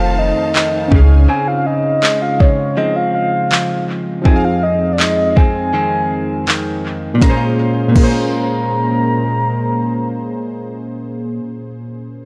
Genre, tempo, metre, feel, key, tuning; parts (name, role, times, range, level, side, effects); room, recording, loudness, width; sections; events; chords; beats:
contemporary R&B; 81 BPM; 4/4; straight; Bb minor; A4 = 445 Hz
soft octave-layered synth lead; melody; 0.0-10.9 s; Db5 to Bb5; -21 LUFS; equal; chorus, analog delay
warm analog keys; accompaniment; 0.0-12.3 s; Bb2 to F5; -22 LUFS; equal; chorus
warm studio string section; sustained chords; 0.0-1.3 s; Db4 to A5; -28 LUFS; equal
direct-recorded clean electric guitar; arpeggios; 0.0-11.6 s; F2 to F4; -23 LUFS; equal; analog delay
clean 808-style bass; bass; 0.0-1.3 s; F1 to Db2; -12 LUFS; equal
smooth R&B drum kit; drums; 0.6-8.2 s; crash cymbal, handclaps, kick drum, snare drum; -16 LUFS; equal
light reverb, digital ambience; echo-heavy mix; -15 LUFS; mono
0.0-7.2 A section; 7.2-10.2 B section
0.0 F7; 0.9 Dbmaj7; 4.3 Fm7; 7.2 Bbm7
0.55 | 1.29 2.03 2.77 3.51 | 4.25 4.99 5.73 6.47 | 7.21 7.96 8.70 9.44